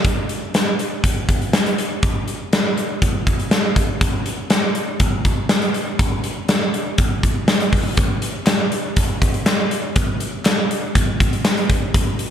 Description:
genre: pop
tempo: 121 BPM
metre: 4/4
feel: straight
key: none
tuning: none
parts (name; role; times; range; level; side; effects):
- big rock drum kit; drums; 0.0-12.3 s; hi-hat, kick drum, snare drum; -17 LUFS; equal; none
- group handclap; percussion; 8.5-11.6 s; none; -31 LUFS; left 3 dB; none
room: light reverb, small room ambience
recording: none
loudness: -17 LUFS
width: side -9 dB against mid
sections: 0.0-12.3 A section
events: none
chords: none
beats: | 0.04 0.54 1.04 1.53 | 2.03 2.52 3.02 3.52 | 4.01 4.51 5.00 5.50 | 6.00 6.49 6.99 7.48 | 7.98 8.47 8.97 9.47 | 9.96 10.46 10.95 11.45 | 11.95

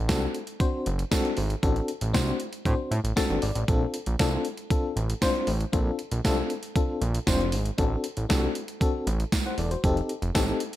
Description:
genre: early-eighties boogie funk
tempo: 117 BPM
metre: 4/4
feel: straight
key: Bb major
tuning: A4 = 440 Hz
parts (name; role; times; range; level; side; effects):
- fat analog bass; bass; 0.0-10.5 s; E1 to A2; -27 LUFS; right 1 dB; none
- FM electric piano with tremolo; accompaniment; 0.1-10.6 s; C4 to A5; -29 LUFS; left 3 dB; none
- clean 12-bit digital drum machine; drums; 0.1-10.8 s; hi-hat, kick drum, snare drum; -28 LUFS; right 1 dB; overdrive, gated reverb
- tambourine; percussion; 0.1-10.5 s; none; -37 LUFS; right 9 dB; none
room: digital ambience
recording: none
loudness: -24 LUFS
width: side -14 dB against mid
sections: 0.0-10.8 A section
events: FM electric piano fill 2.9-3.7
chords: 0.0 D7; 3.7 Bbmaj9; 7.8 D7/A; 9.8 F7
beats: 0.09 0.61 1.12 | 1.63 2.15 2.66 3.17 | 3.68 4.20 4.71 5.22 | 5.74 6.25 6.76 7.27 | 7.79 8.30 8.81 9.32 | 9.84 10.35

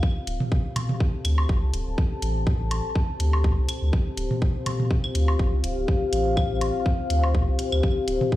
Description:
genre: minimal techno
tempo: 123 BPM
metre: 4/4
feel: swing 55% on 16ths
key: D minor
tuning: A4 = 440 Hz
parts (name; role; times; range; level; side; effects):
- electronic kick drum; drums; 0.0-8.4 s; none; -23 LUFS; equal; none
- deep dark ambient pad; texture; 0.0-8.4 s; G4 to A5; -28 LUFS; left 3 dB; chorus, built-in reverb, sidechain pumping
- saturated sub bass; bass; 0.3-8.2 s; D1 to D2; -23 LUFS; equal; sidechain pumping
- electronic hi-hat; drums; 0.3-8.2 s; none; -35 LUFS; left 1 dB; none
- electronic toms, woodblock and claves; percussion; 0.4-8.3 s; none; -29 LUFS; right 1 dB; digital delay
- noise sweep; sound effects; 8.3-8.4 s; none; barely audible; none; none
room: light reverb, digital ambience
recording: played on a big sound system in a bare room, stone room reverb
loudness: -21 LUFS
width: side -15 dB against mid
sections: 0.0-8.4 A section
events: none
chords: 0.0 Dm7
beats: 0.03 | 0.52 1.00 1.49 1.98 | 2.47 2.96 3.44 3.93 | 4.42 4.91 5.39 5.88 | 6.37 6.86 7.35 7.83 | 8.32

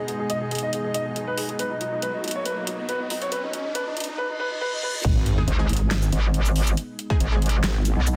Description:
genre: heavy wobble dubstep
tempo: 139 BPM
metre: 4/4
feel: half-time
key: G# minor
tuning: A4 = 441 Hz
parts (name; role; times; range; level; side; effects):
- warm baby grand piano; melody; 0.0-5.0 s; D#4 to D#5; -30 LUFS; equal; low-pass filter, dub echo
- lush unison pad; sustained chords; 0.0-8.2 s; B2 to D#4; -36 LUFS; equal; chorus, sidechain pumping
- riser, reverse cymbal and sub drop; sound effects; 0.7-6.8 s; none; -35 LUFS; equal; none
- dubstep drum kit; drums; 0.1-8.2 s; crash cymbal, handclaps, hi-hat, shaker, snare drum; -32 LUFS; equal; studio reverb
- wobble bass; bass; 5.0-7.9 s; G#1; -25 LUFS; equal; chorus, overdrive
- electronic kick drum; drums; 5.0-7.2 s; none; -24 LUFS; equal; studio reverb
- orchestra-hit-like synth stab; stabs; 5.4-7.4 s; G#3 to G#4; -36 LUFS; equal; built-in reverb, dub echo
- metallic wobble bass; bass; 5.5-8.2 s; G#1 to B1; -23 LUFS; equal; chorus, overdrive
room: light reverb, digital ambience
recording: dense, heavily limited modern master, high-pass filter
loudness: -25 LUFS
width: mono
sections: 0.0-5.0 A section; 5.0-8.2 B section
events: build-up 0.0-5.0; riser 0.7-4.2; filter sweep on grand piano 0.0-5.0; filter sweep 0.0-5.0; reverse cymbal 4.2-5.0; drop 5.0-8.2; impact 5.0-6.8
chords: 0.0 G#m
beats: 0.30 0.73 1.16 | 1.59 2.02 2.46 2.89 | 3.32 3.75 4.18 4.61 | 5.05 5.48 5.91 6.34 | 6.77 7.20 7.64 8.07

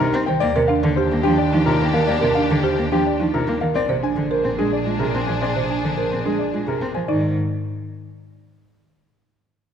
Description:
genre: classical, minimalist pattern music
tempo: 108 BPM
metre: 3/4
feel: straight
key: Ab lydian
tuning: A4 = 440 Hz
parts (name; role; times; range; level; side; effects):
- clear concert grand piano; melody; 0.0-7.3 s; G4 to Ab5; -24 LUFS; left 8 dB; none
- rich cello; accompaniment; 0.0-7.3 s; C3 to C4; -24 LUFS; equal; none
- rich studio violin section; sustained chords; 0.0-6.9 s; D4 to Bb4; -28 LUFS; left 3 dB; none
- folk marimba with medium mallets; arpeggios; 0.0-7.3 s; D4 to C5; -22 LUFS; right 5 dB; none
- rich studio double bass section; bass; 0.0-7.3 s; Bb1 to Ab2; -26 LUFS; right 2 dB; none
room: moderate scoring stage reverb, RT60 2.0 s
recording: dark, warm production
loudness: -18 LUFS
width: side -8 dB against mid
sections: 0.0-7.1 A section; 7.1-8.8 B section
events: none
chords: 0.4 Ebmaj9; 3.8 Bb7; 7.1 Ab5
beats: | 0.42 0.97 1.53 | 2.09 2.64 3.20 | 3.75 4.31 4.86 | 5.42 5.97 6.53 | 7.09

